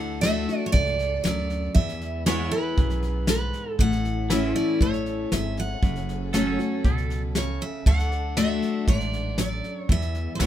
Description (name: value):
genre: honky-tonk and classic country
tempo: 118 BPM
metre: 4/4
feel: straight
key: unclear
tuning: A4 = 437 Hz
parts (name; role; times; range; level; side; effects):
- picked steel-string acoustic guitar; melody; 0.0-10.5 s; B4 to F#5; -29 LUFS; right 3 dB; none
- picked steel-string acoustic guitar; accompaniment; 0.0-10.5 s; E2 to F#4; -28 LUFS; left 3 dB; none
- pedal steel guitar; sustained chords; 0.0-10.5 s; G#4 to F#5; -40 LUFS; right 3 dB; none
- warm symphonic string section; sustained chords; 0.0-10.5 s; E3 to A4; -40 LUFS; left 2 dB; none
- upright bass; bass; 0.0-10.5 s; F#1 to E2; -28 LUFS; right 1 dB; none
- soft brush drum kit; drums; 0.2-10.5 s; hi-hat, kick drum, snare drum; -25 LUFS; equal; none
- twangy electric guitar; second line; 6.3-7.2 s; A4; -34 LUFS; right 5 dB; none
room: light reverb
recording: minimal, uncompressed stereo recording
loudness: -22 LUFS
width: side -11 dB against mid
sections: 0.0-10.5 A section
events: none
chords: 0.0 D; 1.8 E; 3.8 A; 5.8 F#m; 7.9 D; 9.9 E